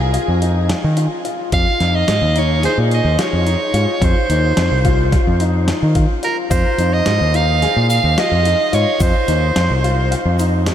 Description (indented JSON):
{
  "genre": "progressive instrumental, band music in an uneven meter",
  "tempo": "216 BPM (eighths)",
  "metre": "9/8",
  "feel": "straight",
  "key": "F minor",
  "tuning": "A4 = 440 Hz",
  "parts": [
    { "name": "edgy soprano saxophone", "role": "melody", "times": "0.0-10.1 s", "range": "Bb4 to F5", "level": "-19 LUFS", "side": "right 2 dB", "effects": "analog delay" },
    { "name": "dark baby grand piano", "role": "arpeggios", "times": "0.0-10.7 s", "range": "Eb4 to Ab4", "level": "-22 LUFS", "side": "left 4 dB", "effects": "analog chorus" },
    { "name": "overdriven fingered electric bass", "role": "bass", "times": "0.0-10.7 s", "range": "C2 to Eb3", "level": "-16 LUFS", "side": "equal", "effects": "none" },
    { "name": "dusty soul sampler-style drum kit", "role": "drums", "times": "0.1-10.7 s", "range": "hi-hat, kick drum, snare drum", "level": "-22 LUFS", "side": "equal", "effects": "none" },
    { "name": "tube shaker", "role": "percussion", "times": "6.5-10.6 s", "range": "none", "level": "-38 LUFS", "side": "left 6 dB", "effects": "none" }
  ],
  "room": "moderate huge ambient reverb, RT60 8.0 s",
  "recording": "dreamy mix soaked in reverb",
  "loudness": "-13 LUFS",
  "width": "side -10 dB against mid",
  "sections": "0.0-10.7 A section",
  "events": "none",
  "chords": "0.0 Fm7"
}